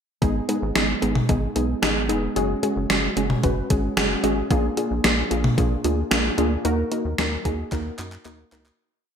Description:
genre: synth-pop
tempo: 112 BPM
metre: 4/4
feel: straight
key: G# minor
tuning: A4 = 439 Hz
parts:
  - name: warbly dusty pluck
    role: accompaniment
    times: 0.2-8.8 s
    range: G#3 to B4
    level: -23 LUFS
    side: equal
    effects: chorus
  - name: rubbery square bass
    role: bass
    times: 0.2-8.7 s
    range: E1 to F#2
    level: -27 LUFS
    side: equal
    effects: none
  - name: gated 80s digital drum machine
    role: drums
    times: 0.2-8.8 s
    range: handclaps, hi-hat, kick drum, snare drum, toms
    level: -23 LUFS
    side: equal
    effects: gated reverb, gated reverb snare, overdrive
room: moderate plate reverb, RT60 1.4 s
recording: bright 1980s-style digital production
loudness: -20 LUFS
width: side -7 dB against mid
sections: 0.2-8.8 verse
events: fade-out 6.6-8.8; drum fill 7.7-8.8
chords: 0.2 G#m; 2.4 F#sus2; 4.5 A#7; 6.6 D#m

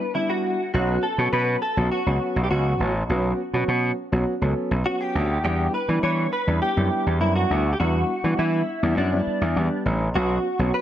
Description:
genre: dance-pop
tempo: 102 BPM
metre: 4/4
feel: straight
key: B minor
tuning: A4 = 438 Hz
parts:
  - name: direct-recorded clean electric guitar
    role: melody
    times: 0.0-10.8 s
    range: D4 to C#5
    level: -26 LUFS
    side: equal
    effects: ensemble chorus, dub echo
  - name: dark grand piano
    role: accompaniment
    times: 0.1-10.8 s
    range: F#3 to A4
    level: -27 LUFS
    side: equal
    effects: none
  - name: gritty slap bass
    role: bass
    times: 0.7-10.7 s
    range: A1 to E3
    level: -22 LUFS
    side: equal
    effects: overdrive
room: light reverb, studio reverb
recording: none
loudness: -20 LUFS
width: side -11 dB against mid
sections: 0.0-10.2 A section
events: none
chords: 0.0 Em7; 0.7 Bsus2; 5.4 Em7; 10.2 Bsus2

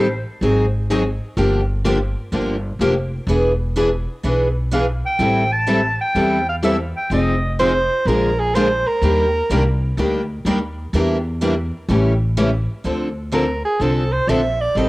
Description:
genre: acoustic string swing (jazz manouche)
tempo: 126 BPM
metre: 4/4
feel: swing 66% on 8ths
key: D minor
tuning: A4 = 439 Hz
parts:
  - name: clear clarinet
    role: melody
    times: 0.0-0.2, 4.7-7.6 s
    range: C5 to A5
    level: -21 LUFS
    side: equal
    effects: cassette tape, analog delay
  - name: picked steel-string acoustic guitar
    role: accompaniment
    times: 0.0-14.9 s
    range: C#3 to A4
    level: -21 LUFS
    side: left 2 dB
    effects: none
  - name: picked steel-string acoustic guitar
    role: accompaniment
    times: 0.0-14.9 s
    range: D3 to B4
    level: -25 LUFS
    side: right 2 dB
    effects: none
  - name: upright bass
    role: bass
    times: 0.0-14.9 s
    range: E1 to E2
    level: -21 LUFS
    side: equal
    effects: none
  - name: mellow soprano saxophone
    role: second line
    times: 7.6-9.8, 13.3-14.9 s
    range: Ab4 to E5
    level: -19 LUFS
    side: right 2 dB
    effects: none
room: light reverb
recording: home recording on cassette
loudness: -16 LUFS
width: side -19 dB against mid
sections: 0.0-12.8 A section; 12.8-14.9 B section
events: soprano saxophone solo 12.8-14.9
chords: 0.4 G#7; 1.4 Gm7; 3.3 E7; 5.2 Am7; 7.1 Fm7; 8.1 Bb7; 9.0 Ebmaj7; 10.9 Em7b5; 11.9 A7; 12.8 Dm7

